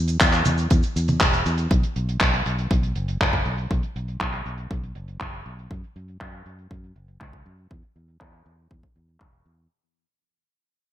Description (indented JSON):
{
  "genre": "italo disco",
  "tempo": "120 BPM",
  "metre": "4/4",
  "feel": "straight",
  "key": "unclear",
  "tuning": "A4 = 442 Hz",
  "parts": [
    { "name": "fingered electric bass", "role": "bass", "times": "0.0-9.7 s", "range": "E1 to F#2", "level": "-26 LUFS", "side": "equal", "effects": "none" },
    { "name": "damped 70s drum kit", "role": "drums", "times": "0.1-9.7 s", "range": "cabasa, handclaps, hi-hat, toms", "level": "-24 LUFS", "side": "equal", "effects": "low-pass filter on hats, low-pass filter on toms, low-pass filter on snare, low-pass filter on perc, low-pass filter on room, gated reverb" },
    { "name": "electronic kick drum", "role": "drums", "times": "0.2-9.3 s", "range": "none", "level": "-23 LUFS", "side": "equal", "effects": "none" }
  ],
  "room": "light reverb",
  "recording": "bright 1980s-style digital production",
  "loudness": "-20 LUFS",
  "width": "side -11 dB against mid",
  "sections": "0.0-9.7 A section",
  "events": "fade-out 0.0-9.7; filter sweep on drum 0.0-9.7",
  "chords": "none",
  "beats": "0.21 0.71 1.21 | 1.71 2.21 2.71 3.21 | 3.71 4.21 4.71 5.21 | 5.71 6.21 6.71 7.21 | 7.71 8.21 8.71 9.21"
}